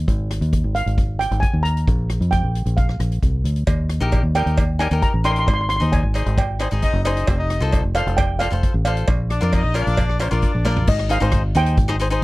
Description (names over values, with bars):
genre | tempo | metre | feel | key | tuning
calypso | 133 BPM | 4/4 | straight | unclear | A4 = 441 Hz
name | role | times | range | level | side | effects
fingered electric bass | bass | 0.0-12.2 s | F1 to F2 | -20 LUFS | equal | none
street-band drum kit | drums | 0.1-12.2 s | crash cymbal, hi-hat, kick drum, rim click, snare drum, toms | -22 LUFS | equal | none
steel pan | melody | 0.7-12.2 s | Eb5 to C6 | -24 LUFS | right 2 dB | none
cowbell | percussion | 3.7-10.8 s | none | -28 LUFS | right 3 dB | none
cavaquinho | accompaniment | 4.0-12.2 s | Eb4 to F5 | -25 LUFS | left 3 dB | none
clear horn section | second line | 6.8-10.8 s | C4 to Eb5 | -26 LUFS | left 3 dB | none
room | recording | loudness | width
little or no reverb | dry, close 1970s-style studio recording | -17 LUFS | side -20 dB against mid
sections
0.0-10.9 A section; 10.9-12.2 B section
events
drum fill 10.6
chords
0.1 Ab5; 1.9 Bb5; 3.7 Eb; 5.5 Abmaj7; 7.3 F7; 9.1 Bb; 10.9 Abmaj7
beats
| 0.08 0.53 0.97 1.43 | 1.88 2.33 2.77 3.23 | 3.67 4.12 4.58 5.03 | 5.47 5.92 6.38 6.83 | 7.28 7.73 8.18 8.63 | 9.08 9.53 9.97 10.43 | 10.87 11.32 11.77 12.22